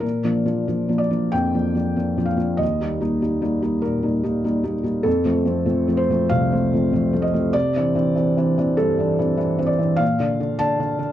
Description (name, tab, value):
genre	neoclassical minimalist piano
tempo	98 BPM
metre	4/4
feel	rubato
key	Bb major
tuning	A4 = 439 Hz
part	felt-muted upright piano	solo	0.0-11.1 s	C2 to A5	-18 LUFS	equal	none
room	light reverb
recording	dark, warm production, nothing above 10.8 kHz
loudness	-18 LUFS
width	side -12 dB against mid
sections	0.0-11.1 A section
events	none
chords	0.0 Bb; 2.6 Eb; 5.1 F; 7.5 Cadd9; 10.0 Bb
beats	| 0.03 0.68 1.35 1.98 | 2.61 3.22 3.83 4.45 | 5.06 5.67 6.32 6.93 | 7.54 8.16 8.78 9.39 | 10.01 10.62